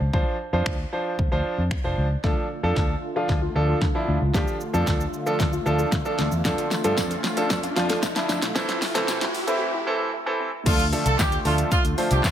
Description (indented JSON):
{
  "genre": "dance-pop",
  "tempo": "114 BPM",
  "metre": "4/4",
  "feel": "straight",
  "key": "unclear",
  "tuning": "A4 = 442 Hz",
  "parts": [
    { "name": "vintage muted fingered electric bass", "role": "bass", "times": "0.0-12.2 s", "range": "F1 to F3", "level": "-25 LUFS", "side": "equal", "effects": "sidechain pumping" },
    { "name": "clear concert grand piano", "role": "accompaniment", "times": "0.1-12.2 s", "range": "E3 to C5", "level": "-26 LUFS", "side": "right 1 dB", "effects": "sidechain pumping" },
    { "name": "pop drum kit", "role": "drums", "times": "0.1-12.3 s", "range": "crash cymbal, finger snaps, handclaps, hi-hat, kick drum, shaker, snare drum", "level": "-25 LUFS", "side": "equal", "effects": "none" },
    { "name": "filtered supersaw swell", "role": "sustained chords", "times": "2.2-12.3 s", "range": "C3 to F4", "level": "-32 LUFS", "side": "equal", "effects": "sidechain pumping" },
    { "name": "soft round pluck", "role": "arpeggios", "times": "2.2-10.5 s", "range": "A3 to A4", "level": "-33 LUFS", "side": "left 3 dB", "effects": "chorus, sidechain pumping, tape echo" },
    { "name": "riser", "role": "sound effects", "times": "4.7-9.6 s", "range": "none", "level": "-34 LUFS", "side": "equal", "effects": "none" },
    { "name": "tambourine", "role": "percussion", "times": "6.4-12.3 s", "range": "none", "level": "-38 LUFS", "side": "left 7 dB", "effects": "none" },
    { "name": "warm horn section", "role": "melody", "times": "10.7-12.2 s", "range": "F4 to A4", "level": "-26 LUFS", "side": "right 2 dB", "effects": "sidechain pumping" }
  ],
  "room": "light reverb, digital ambience",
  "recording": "high-pass filter",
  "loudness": "-21 LUFS",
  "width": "side -10 dB against mid",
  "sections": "0.0-2.2 A section; 2.2-10.7 B section; 10.7-12.3 C section",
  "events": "build-up 2.2-10.7; drum fill 2.2-9.6; filter sweep 2.2-10.7; riser 4.7-10.7; break 9.6-10.7; drop 10.7-12.3",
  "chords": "0.0 Dm7; 2.2 Dm; 6.5 F6; 8.6 C6; 10.7 Dm",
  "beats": "| 0.13 0.66 1.19 1.71 | 2.24 2.77 3.29 3.82 | 4.34 4.87 5.40 5.92 | 6.45 6.98 7.50 8.03 | 8.55 9.08 9.61 10.13 | 10.66 11.19 11.71 12.24"
}